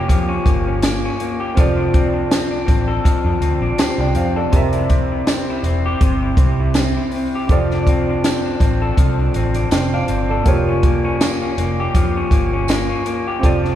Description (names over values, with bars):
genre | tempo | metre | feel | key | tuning
indie pop, bedroom pop | 81 BPM | 4/4 | swing 55% on 16ths | unclear | A4 = 441 Hz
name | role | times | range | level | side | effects
dark upright piano | accompaniment | 0.0-13.8 s | Bb3 to G5 | -25 LUFS | right 3 dB | none
electric guitar through a small old amp | accompaniment | 0.0-13.8 s | C3 to A4 | -21 LUFS | left 3 dB | vibrato effect
vintage muted fingered electric bass | bass | 0.0-13.8 s | E1 to F2 | -21 LUFS | right 1 dB | none
compact cocktail drum kit | drums | 0.1-13.7 s | hi-hat, kick drum, snare drum | -18 LUFS | equal | none
tambourine | percussion | 0.8-12.9 s | none | -35 LUFS | right 7 dB | none
room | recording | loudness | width
wet church reverb, RT60 2.8 s | recorded in a church or concert hall | -15 LUFS | side -11 dB against mid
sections
0.0-13.8 A section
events
none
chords
0.0 Bbm6/F; 1.6 Dm7/F; 4.5 C7; 7.5 F6; 10.5 Bbm6/F